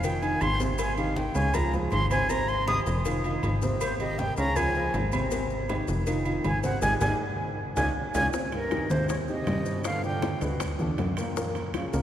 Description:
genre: Afro-Cuban jazz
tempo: 159 BPM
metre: 4/4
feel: straight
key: Ab major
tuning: A4 = 440 Hz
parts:
  - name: breathy concert flute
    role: melody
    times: 0.0-10.4 s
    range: Bb4 to Eb6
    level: -30 LUFS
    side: equal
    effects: none
  - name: dark upright piano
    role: accompaniment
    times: 0.0-12.0 s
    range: Bb2 to Db5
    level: -31 LUFS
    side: equal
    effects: none
  - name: plucky analog bass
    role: bass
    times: 0.0-12.0 s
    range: F1 to G2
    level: -30 LUFS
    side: equal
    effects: none
  - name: agogo bells and timbales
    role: percussion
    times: 0.0-11.9 s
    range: none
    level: -36 LUFS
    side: right 3 dB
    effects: none
  - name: congas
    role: percussion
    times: 0.0-12.0 s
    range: none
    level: -37 LUFS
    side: equal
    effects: none
  - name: cowbell and bongos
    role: percussion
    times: 0.0-12.0 s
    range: none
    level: -37 LUFS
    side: left 5 dB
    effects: none
  - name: maracas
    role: percussion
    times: 0.0-12.0 s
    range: none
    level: -46 LUFS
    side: left 6 dB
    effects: none
  - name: warm trombone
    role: second line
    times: 8.5-10.4 s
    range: G2 to D3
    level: -38 LUFS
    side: right 2 dB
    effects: none
room: wet cathedral reverb, RT60 4.9 s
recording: recorded in a church or concert hall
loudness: -25 LUFS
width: side -11 dB against mid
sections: 0.0-8.3 A section; 8.3-12.0 B section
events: flute solo 0.0-8.3; drum fill 6.8-8.3; band accent 6.8-8.3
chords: 0.0 Fm7; 0.8 Abmaj7; 1.5 Db; 2.3 Abmaj7; 3.1 Fm7; 3.8 Abmaj7; 4.6 Db; 5.3 Abmaj7; 6.1 Fm7; 6.8 Ab5; 7.6 Dbadd9; 8.3 Eb6; 9.8 G7; 11.4 Gbmaj7

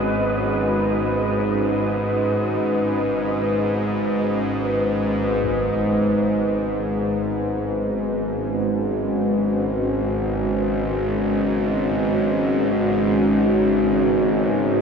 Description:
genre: dark ambient drone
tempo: free time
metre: none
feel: none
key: G# minor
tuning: A4 = 441 Hz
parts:
  - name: deep dark ambient pad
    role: sustained chords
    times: 0.0-14.8 s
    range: G#3 to D#5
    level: -21 LUFS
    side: equal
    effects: chorus, built-in reverb
  - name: bowed-like drone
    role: drone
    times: 0.0-14.8 s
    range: G#1 to G#2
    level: -23 LUFS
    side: equal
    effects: built-in reverb
  - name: wind-like tuned noise texture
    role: texture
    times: 0.0-5.4 s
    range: D#5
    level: -33 LUFS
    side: right 2 dB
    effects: built-in reverb
  - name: impact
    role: percussion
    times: 5.4-5.6 s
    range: none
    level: -40 LUFS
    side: right 1 dB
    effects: none
room: wet huge ambient reverb, RT60 7.6 s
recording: worn, warbling old tape, cassette tape, warbly pitch drift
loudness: -19 LUFS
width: side -6 dB against mid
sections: 0.0-5.4 A section; 5.4-14.8 B section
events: none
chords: 0.0 G#m

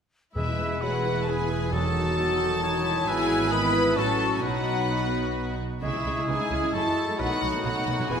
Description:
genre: quick classical-period movement for symphony orchestra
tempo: 132 BPM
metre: 3/4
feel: straight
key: E major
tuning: A4 = 440 Hz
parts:
  - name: hollow concert flute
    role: second line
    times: 0.3-8.2 s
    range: B5 to E6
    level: -34 LUFS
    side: equal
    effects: none
  - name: warm studio violin section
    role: second line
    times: 0.3-8.2 s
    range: E4 to B4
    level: -33 LUFS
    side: left 3 dB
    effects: none
  - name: clear studio violin section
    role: melody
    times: 0.4-8.2 s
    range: E5 to B5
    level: -31 LUFS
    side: left 3 dB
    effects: none
  - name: clear oboe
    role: second line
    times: 0.4-8.2 s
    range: F#4 to C#5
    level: -34 LUFS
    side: right 2 dB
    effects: none
  - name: warm clarinet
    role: second line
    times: 0.4-8.2 s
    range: C#4 to B4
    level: -35 LUFS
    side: left 1 dB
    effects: none
  - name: dark bassoon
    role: accompaniment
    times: 0.4-8.2 s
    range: D#3 to G#3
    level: -34 LUFS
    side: right 1 dB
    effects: none
  - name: warm studio viola section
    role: accompaniment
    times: 0.4-8.2 s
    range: C#3 to F#4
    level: -33 LUFS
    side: right 4 dB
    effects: none
  - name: mellow French horn section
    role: sustained chords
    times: 0.4-8.2 s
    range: D#3 to G#4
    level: -32 LUFS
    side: left 4 dB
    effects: none
  - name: warm studio cello section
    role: bass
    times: 0.4-8.2 s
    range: E2 to C#3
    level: -33 LUFS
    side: right 3 dB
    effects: none
  - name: warm studio double bass section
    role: bass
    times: 0.4-8.2 s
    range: E1 to C#2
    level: -34 LUFS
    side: right 4 dB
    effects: none
  - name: timpani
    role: percussion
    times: 0.4-2.4 s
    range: E2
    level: -34 LUFS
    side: left 1 dB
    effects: none
room: wet scoring stage reverb, RT60 2.0 s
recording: none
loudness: -23 LUFS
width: side -7 dB against mid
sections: 0.4-8.2 A section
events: none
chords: 0.4 E; 1.7 D#dim/E; 3.1 E/G#; 4.0 F#m/A; 4.4 B; 5.8 C#m; 6.7 F#m7; 7.2 B7

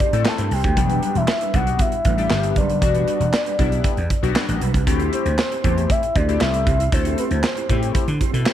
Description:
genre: early-eighties boogie funk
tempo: 117 BPM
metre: 4/4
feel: straight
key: E minor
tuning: A4 = 444 Hz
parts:
  - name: soft octave-layered synth lead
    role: melody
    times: 0.0-8.0 s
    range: B4 to A5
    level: -24 LUFS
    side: left 2 dB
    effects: chorus, tremolo, slapback echo
  - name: mellow electric guitar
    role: riff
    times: 0.0-8.5 s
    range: G3 to C5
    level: -31 LUFS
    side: right 15 dB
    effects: ensemble chorus
  - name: modern studio drum kit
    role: drums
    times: 0.0-8.5 s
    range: handclaps, hi-hat, kick drum, snare drum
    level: -21 LUFS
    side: right 1 dB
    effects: none
  - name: chorused polysynth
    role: accompaniment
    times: 0.1-8.5 s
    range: F#3 to C5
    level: -26 LUFS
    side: left 10 dB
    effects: phaser
  - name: vintage slap bass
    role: bass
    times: 0.1-8.4 s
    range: E1 to D3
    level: -21 LUFS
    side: right 1 dB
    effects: none
room: light reverb, small room ambience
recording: 1960s-style stereo with parts hard left and right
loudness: -17 LUFS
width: side -11 dB against mid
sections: 0.0-8.5 A section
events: none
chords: 0.0 D9sus4; 0.8 Em9; 4.9 D9sus4

